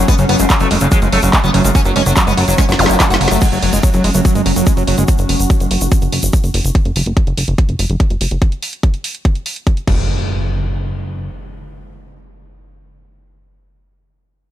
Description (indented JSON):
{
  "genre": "psychedelic trance",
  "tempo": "144 BPM",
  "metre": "4/4",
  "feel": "straight",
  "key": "F# minor",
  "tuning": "A4 = 439 Hz",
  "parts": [
    { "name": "sitar", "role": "melody", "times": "0.0-3.4 s", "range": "C#3 to F#4", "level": "-19 LUFS", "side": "left 2 dB", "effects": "phaser, sidechain pumping, dub echo" },
    { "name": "swarming drone", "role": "sustained chords", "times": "0.0-5.1 s", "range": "F#3 to C#4", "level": "-21 LUFS", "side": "right 1 dB", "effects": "built-in reverb, sidechain pumping" },
    { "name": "screaming distorted acid line", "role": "riff", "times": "0.0-5.0 s", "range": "F#3 to C#4", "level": "-19 LUFS", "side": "moving between left 6 dB and right 6 dB", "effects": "distortion, chorus, auto-pan, cassette tape, sidechain pumping, dub echo" },
    { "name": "plucky analog bass", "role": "bass", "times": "0.0-11.3 s", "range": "F#1", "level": "-16 LUFS", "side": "equal", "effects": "tube saturation" },
    { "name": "drum and bass drum kit", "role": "drums", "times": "0.1-10.0 s", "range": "crash cymbal, handclaps, hi-hat, snare drum", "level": "-20 LUFS", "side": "right 1 dB", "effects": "none" },
    { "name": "electronic kick drum", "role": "drums", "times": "0.1-10.0 s", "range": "none", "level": "-12 LUFS", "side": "equal", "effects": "none" },
    { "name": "egg shaker", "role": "percussion", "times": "0.1-6.7 s", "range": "none", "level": "-25 LUFS", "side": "left 2 dB", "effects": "none" },
    { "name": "zap and impact", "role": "sound effects", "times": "2.8-2.9, 9.9-13.8 s", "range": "none", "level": "-22 LUFS", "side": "equal", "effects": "none" },
    { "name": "deep dark ambient pad", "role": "texture", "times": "4.2-6.8 s", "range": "C#4 to C#6", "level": "-28 LUFS", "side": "right 2 dB", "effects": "chorus, built-in reverb, sidechain pumping" }
  ],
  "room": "digital ambience",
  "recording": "none",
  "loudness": "-12 LUFS",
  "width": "side -12 dB against mid",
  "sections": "0.0-3.4 A section; 3.4-10.1 B section; 10.1-13.4 C section",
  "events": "drop 0.0-3.4; drum fill 2.6-3.4; fade-out on ambient pad 3.4-6.8; filter sweep on analog synth bass 3.4-8.4; filter sweep on synth drone 3.4-5.1",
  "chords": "0.0 F#5; 9.9 N.C.",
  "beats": "| 0.08 0.50 0.92 1.33 | 1.75 2.17 2.58 3.00 | 3.42 3.83 4.25 4.67 | 5.08 5.50 5.92 6.33 | 6.75 7.17 7.58 8.00 | 8.42 8.83 9.25 9.67 | 10.08 10.50 10.92 11.33 | 11.75 12.17 12.58 13.00"
}